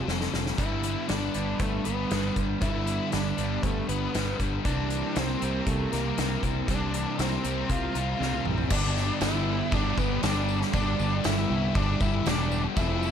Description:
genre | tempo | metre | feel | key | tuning
rock, shoegaze and dream pop | 118 BPM | 4/4 | straight | unclear | A4 = 440 Hz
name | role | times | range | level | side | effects
octave-fuzz lead guitar | melody | 0.0-13.1 s | A3 to F4 | -33 LUFS | equal | distortion, tape echo
crunchy overdriven guitar | riff | 0.0-13.1 s | G2 to B4 | -32 LUFS | left 11 dB | analog chorus
crunchy overdriven guitar | riff | 0.0-13.1 s | F2 to E4 | -34 LUFS | right 12 dB | reverse reverb
growling fingered electric bass | bass | 0.1-13.1 s | E1 to C2 | -31 LUFS | equal | overdrive
loose indie drum kit | drums | 0.1-12.9 s | crash cymbal, hi-hat, kick drum, snare drum, toms | -30 LUFS | equal | none
crunchy overdriven guitar | riff | 0.6-8.7 s | G2 to C4 | -35 LUFS | equal | none
tambourine | percussion | 8.7-13.1 s | none | -44 LUFS | right 12 dB | none
room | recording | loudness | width
light reverb | none | -25 LUFS | side -8 dB against mid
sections
0.0-8.7 A section; 8.7-13.1 B section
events
drum fill 0.0-0.6, 8.2-8.7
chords
0.0 F; 0.6 G; 4.7 C7(no3); 8.7 G

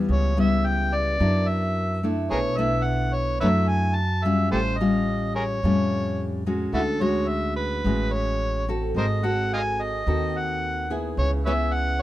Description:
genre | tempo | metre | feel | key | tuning
bossa nova | 108 BPM | 4/4 | straight | A major | A4 = 440 Hz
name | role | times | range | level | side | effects
nylon-string guitar | accompaniment | 0.0-12.0 s | A2 to A#4 | -25 LUFS | left 1 dB | none
upright bass | bass | 0.0-12.0 s | G#1 to F#2 | -27 LUFS | right 1 dB | none
overdriven harmonica | melody | 0.1-12.0 s | E4 to A5 | -26 LUFS | equal | none
room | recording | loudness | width
little or no reverb | minimal, uncompressed stereo recording | -21 LUFS | side -15 dB against mid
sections
0.0-12.0 A section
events
none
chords
0.1 C#m7b5; 1.2 F#7b13; 2.3 Bm11; 4.5 Aaug7; 6.7 Dmaj7#11; 9.0 G#7b9; 11.2 C#m7

